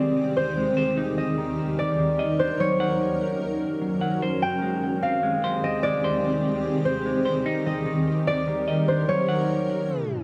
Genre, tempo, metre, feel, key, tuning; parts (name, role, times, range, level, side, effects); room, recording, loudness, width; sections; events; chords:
hip hop; 148 BPM; 4/4; half-time; Ab lydian; A4 = 440 Hz
concert harp; melody; 0.0-10.2 s; C5 to G5; -28 LUFS; equal; delay
granular cloud pad; sustained chords; 0.0-10.2 s; Eb3 to Bb4; -28 LUFS; equal; built-in reverb
semi-hollow electric guitar; arpeggios; 0.0-10.2 s; Eb3 to Gb5; -32 LUFS; equal; delay
light reverb; dark, warm production, tape stop; -24 LUFS; mono
0.0-10.2 A section
tape stop 9.9-10.2
0.0 Abmaj7; 1.0 Ebmaj7; 2.6 Gb; 4.2 Abmaj7; 7.5 Ebmaj7; 9.1 Gb